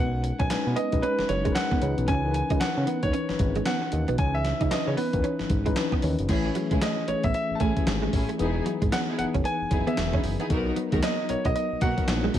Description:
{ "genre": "R&B, new jack swing", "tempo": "114 BPM", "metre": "4/4", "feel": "swing 61% on 16ths", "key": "unclear", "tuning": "A4 = 440 Hz", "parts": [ { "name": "clear baby grand piano", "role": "melody", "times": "0.0-12.3 s", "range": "B4 to A5", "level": "-30 LUFS", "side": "right 2 dB", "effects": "none" }, { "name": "tine electric piano", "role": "accompaniment", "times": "0.0-12.4 s", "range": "D#3 to B4", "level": "-30 LUFS", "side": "left 6 dB", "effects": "medium tremolo" }, { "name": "direct-recorded clean electric guitar", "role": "riff", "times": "0.0-12.4 s", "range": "F#3 to D#4", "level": "-33 LUFS", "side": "right 5 dB", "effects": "ensemble chorus" }, { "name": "fat analog bass", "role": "bass", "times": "0.0-12.4 s", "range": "E1 to C#3", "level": "-28 LUFS", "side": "equal", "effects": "none" }, { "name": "gated 80s digital drum machine", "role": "drums", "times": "0.2-12.4 s", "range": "crash cymbal, handclaps, hi-hat, kick drum, snare drum", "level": "-28 LUFS", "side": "equal", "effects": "gated reverb, gated reverb snare" }, { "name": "warm studio string section", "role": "stabs", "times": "6.3-12.4 s", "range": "A3 to A#4", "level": "-33 LUFS", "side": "right 2 dB", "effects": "none" } ], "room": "digital ambience", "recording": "none", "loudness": "-23 LUFS", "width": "side -11 dB against mid", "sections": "0.0-6.3 A section; 6.3-12.4 B section", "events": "none", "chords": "0.0 B69; 1.8 C#m9; 6.3 Amaj7; 8.4 Emaj7; 10.5 Bmaj7", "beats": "0.50 1.03 1.55 | 2.08 2.60 3.13 3.66 | 4.18 4.71 5.24 5.76 | 6.29 6.82 7.34 7.87 | 8.39 8.92 9.45 9.97 | 10.50 11.03 11.55 12.08" }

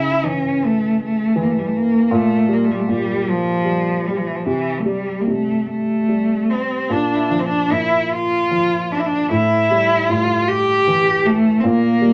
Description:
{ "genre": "celtic folk, Celtic slow air", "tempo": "76 BPM", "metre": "3/4", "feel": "uneven beats, rubato", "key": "unclear", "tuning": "A4 = 438 Hz", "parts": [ { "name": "warm cello", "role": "melody", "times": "0.0-12.1 s", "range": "E3 to G4", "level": "-19 LUFS", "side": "equal", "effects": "none" }, { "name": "dark upright piano", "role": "accompaniment", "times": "0.0-12.1 s", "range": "A2 to G3", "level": "-24 LUFS", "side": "equal", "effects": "none" } ], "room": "moderate studio reverb, RT60 0.5 s", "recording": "none", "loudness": "-18 LUFS", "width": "mono", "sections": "0.0-12.1 A section", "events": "none", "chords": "0.0 C#m6; 2.1 Gm/Bb; 4.5 C5; 6.9 Bb5; 9.3 A5", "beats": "0.62 1.38 | 2.13 2.90 3.67 | 4.46 5.27 6.09 | 6.91 7.71 8.51 | 9.30 10.10 10.87 | 11.64" }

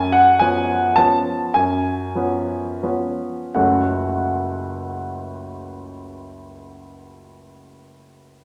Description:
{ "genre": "classical, piano waltz", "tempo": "77-116 BPM", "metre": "3/4", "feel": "rubato", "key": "F# minor", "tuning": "A4 = 440 Hz", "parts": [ { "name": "clear baby grand piano", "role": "solo", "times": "0.0-8.4 s", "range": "F#1 to A5", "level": "-20 LUFS", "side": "equal", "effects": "none" } ], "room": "wet recital hall reverb, RT60 1.5 s", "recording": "none", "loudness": "-20 LUFS", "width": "mono", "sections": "0.0-3.6 A section; 3.6-7.5 B section", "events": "slowing down 0.0-3.6", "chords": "0.0 C#7/F#; 3.6 F#m", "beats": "0.41 0.97 | 1.55 2.14 2.82 | 3.55 4.21 4.86 | 5.50 6.13 6.80" }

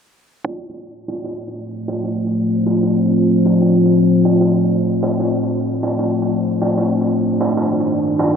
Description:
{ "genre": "trip hop", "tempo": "76 BPM", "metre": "4/4", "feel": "swing 60% on 16ths", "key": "D phrygian", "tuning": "A4 = 444 Hz", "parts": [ { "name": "deep dark ambient pad", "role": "sustained chords", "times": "1.7-8.4 s", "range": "G3 to D5", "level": "-15 LUFS", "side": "left 1 dB", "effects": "chorus, built-in reverb" }, { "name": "darbuka", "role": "percussion", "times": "0.4-8.3 s", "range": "none", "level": "-24 LUFS", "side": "right 2 dB", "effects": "none" } ], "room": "wet huge ambient reverb, RT60 7.3 s", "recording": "dreamy mix soaked in reverb, low-pass filter", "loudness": "-14 LUFS", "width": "side -7 dB against mid", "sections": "0.5-8.4 A section", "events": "filter sweep on ambient pad 0.5-8.4; filter sweep 0.5-8.4", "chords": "0.5 Dm7; 6.8 Ebmaj7", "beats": "| 0.46 1.25 2.04 2.83 | 3.62 4.41 5.20 5.98 | 6.77 7.56 8.35" }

